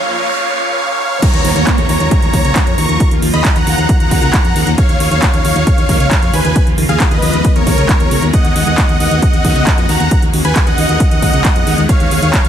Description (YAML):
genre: uplifting trance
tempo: 135 BPM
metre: 4/4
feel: straight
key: Eb minor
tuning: A4 = 440 Hz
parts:
  - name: big supersaw lead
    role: melody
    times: 0.0-12.5 s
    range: Ab4 to Db6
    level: -17 LUFS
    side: equal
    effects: cassette tape, sidechain pumping, dub echo
  - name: noise sweep and downlifter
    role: sound effects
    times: 0.0-4.8 s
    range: none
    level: -21 LUFS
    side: right 3 dB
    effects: none
  - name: big-room dance drum kit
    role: drums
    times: 1.2-12.5 s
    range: crash cymbal, handclaps, hi-hat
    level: -20 LUFS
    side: right 1 dB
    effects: none
  - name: electronic kick drum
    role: drums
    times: 1.2-12.4 s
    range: none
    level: -13 LUFS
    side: equal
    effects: none
  - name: solid FM bass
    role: bass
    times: 1.3-12.5 s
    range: Db2 to F2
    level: -16 LUFS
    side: equal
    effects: sidechain pumping
room: little or no reverb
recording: high-pass filter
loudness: -10 LUFS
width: side -9 dB against mid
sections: 0.0-1.2 A section; 1.2-12.5 B section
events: break 0.0-1.2; build-up 0.0-1.2; noise sweep 0.0-1.2; drop 1.2-12.5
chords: 0.0 N.C.; 1.2 Bbm/Eb; 3.0 Ebm7; 4.8 Bbm/Eb; 6.6 Abm/Eb; 8.3 Ebm7; 10.1 Abm/Eb; 11.9 Db7/Eb